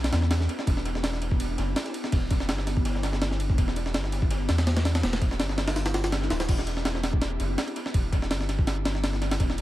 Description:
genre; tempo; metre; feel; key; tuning
drum and bass, jungle; 165 BPM; 4/4; swing 53% on 16ths; E minor; A4 = 440 Hz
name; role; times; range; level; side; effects
soft dub sub bass; bass; 0.0-9.6 s; D1 to E2; -28 LUFS; equal; tube saturation
crunchy breakbeat drum kit; drums; 0.0-6.5 s; hi-hat, shaker, snare drum; -45 LUFS; equal; none
jungle sampler-style drum kit; drums; 0.0-9.6 s; crash cymbal, kick drum, ride cymbal, snare drum; -26 LUFS; equal; dub echo
room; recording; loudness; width
small room ambience; echo-heavy mix, vinyl crackle; -24 LUFS; side -15 dB against mid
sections
0.0-6.5 A section; 6.5-9.6 A section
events
drop 0.0-6.5, 6.5-9.6; kick drops out 5.8-6.5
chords
none

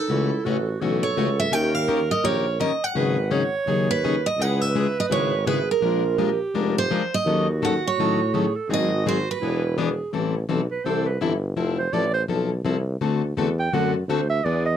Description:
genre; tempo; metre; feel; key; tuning
acoustic string swing (jazz manouche); 167 BPM; 4/4; swing 60% on 8ths; A minor from 10.1 s; A4 = 440 Hz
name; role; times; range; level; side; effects
picked steel-string acoustic guitar; melody; 0.0-9.8 s; A4 to G5; -24 LUFS; right 5 dB; none
breathy clarinet; second line; 0.0-14.8 s; D#4 to G5; -27 LUFS; right 5 dB; none
picked plugged-in steel-string acoustic guitar; accompaniment; 0.1-14.7 s; C#3 to A#4; -25 LUFS; left 6 dB; none
warm tuba; bass; 0.1-14.8 s; E1 to A2; -26 LUFS; equal; none
room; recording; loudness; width
light reverb; dry, close 1970s-style studio recording; -20 LUFS; side -9 dB against mid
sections
0.0-10.1 A section; 10.1-14.8 B section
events
clarinet solo 10.1-14.8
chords
0.1 F#m7; 1.5 D#7; 3.0 G#7sus4; 4.4 C#m7; 5.8 A#7; 7.3 D#m7b5; 8.7 G#7; 9.4 E7; 10.1 Am7; 11.6 Fmaj7; 13.0 D7

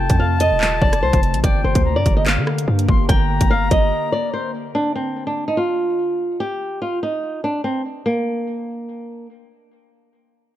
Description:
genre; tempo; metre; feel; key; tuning
hip hop, drill; 145 BPM; 4/4; half-time; G minor; A4 = 440 Hz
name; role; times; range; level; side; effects
flamenco guitar; melody; 0.0-9.3 s; Bb3 to G5; -21 LUFS; equal; low-pass filter
concert flute; second line; 0.0-4.7 s; G5 to C6; -25 LUFS; left 3 dB; tape echo
glassy FM pad; sustained chords; 0.0-4.7 s; C3 to Bb4; -27 LUFS; left 2 dB; ensemble chorus, built-in reverb
hard-hitting 808-style bass; bass; 0.0-3.9 s; Eb1 to D3; -20 LUFS; equal; none
drill drum kit; drums; 0.1-3.8 s; handclaps, hi-hat, kick drum, rim click; -18 LUFS; equal; overdrive
room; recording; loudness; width
digital ambience; dark, warm production; -17 LUFS; side -13 dB against mid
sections
0.0-4.7 A section; 4.7-8.1 B section; 8.1-10.6 C section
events
break 3.9-4.7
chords
0.0 F; 1.4 Gm; 4.7 N.C.

